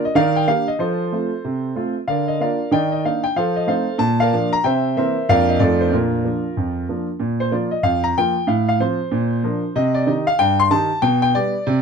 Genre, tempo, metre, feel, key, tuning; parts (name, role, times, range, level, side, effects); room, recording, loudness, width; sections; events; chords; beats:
jazz, stride piano; 188 BPM; 4/4; swing 63% on 8ths; Bb major; A4 = 440 Hz
warm concert grand piano; solo; 0.0-11.8 s; F2 to C6; -17 LUFS; equal
little or no reverb; dark, warm production; -17 LUFS; side -6 dB against mid
0.0-7.2 A section; 7.2-11.8 B section
0.2 Ebmaj7; 0.8 F; 2.1 Bb/D; 2.7 Eb5; 3.4 F7; 4.0 Bb; 4.6 C7; 5.3 Bb/F; 5.6 F7; 5.9 Bb; 7.2 Bb5; 8.5 F/A; 9.1 Bb; 9.8 Cm; 11.0 G/B
0.16 0.48 | 0.80 1.12 1.44 1.76 | 2.08 2.40 2.72 3.04 | 3.36 3.68 4.00 4.32 | 4.64 4.96 5.28 5.60 | 5.92 6.24 6.56 6.88 | 7.20 7.52 7.84 8.16 | 8.48 8.80 9.12 9.44 | 9.76 10.07 10.39 10.71 | 11.03 11.35 11.67